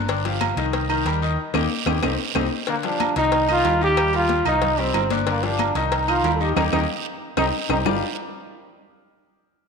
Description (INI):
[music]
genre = latin, salsa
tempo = 185 BPM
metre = 4/4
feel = straight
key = G minor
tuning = A4 = 440 Hz
[part]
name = bright grand piano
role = accompaniment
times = 0.0-8.0 s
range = D3 to Eb5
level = -26 LUFS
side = left 8 dB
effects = none
[part]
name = hollow-body short-scale fingered electric bass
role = bass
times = 0.0-8.0 s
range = G1 to Eb2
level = -26 LUFS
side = right 2 dB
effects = none
[part]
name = agogo bells and timbales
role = percussion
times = 0.1-7.9 s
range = none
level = -28 LUFS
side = right 10 dB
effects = none
[part]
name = congas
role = percussion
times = 0.1-7.9 s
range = none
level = -32 LUFS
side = left 10 dB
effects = none
[part]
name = cowbell and bongos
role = percussion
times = 0.1-7.9 s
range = none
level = -32 LUFS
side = left 8 dB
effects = none
[part]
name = guiro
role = percussion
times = 0.1-7.9 s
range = none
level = -34 LUFS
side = right 14 dB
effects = none
[part]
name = claves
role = percussion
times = 0.4-7.9 s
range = none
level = -35 LUFS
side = left 10 dB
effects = none
[part]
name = bright trombone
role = melody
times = 2.7-7.8 s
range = Bb3 to A4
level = -22 LUFS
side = right 1 dB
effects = slapback echo
[sound]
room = wet echo chamber reverb, RT60 1.9 s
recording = 1960s-style stereo with parts hard left and right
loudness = -19 LUFS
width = side -5 dB against mid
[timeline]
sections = 0.0-2.7 A section; 2.7-7.9 B section; 7.9-9.2 C section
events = band accent 1.4-2.7, 6.6-7.9; drum fill 1.9-2.7, 6.6-7.9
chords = 0.1 G5; 0.7 Cm7; 1.4 Eb; 2.0 Cm; 2.7 G5; 3.3 Cm7; 5.3 G5; 5.9 Cm7; 6.6 Eb; 7.2 Cm; 7.9 Gm7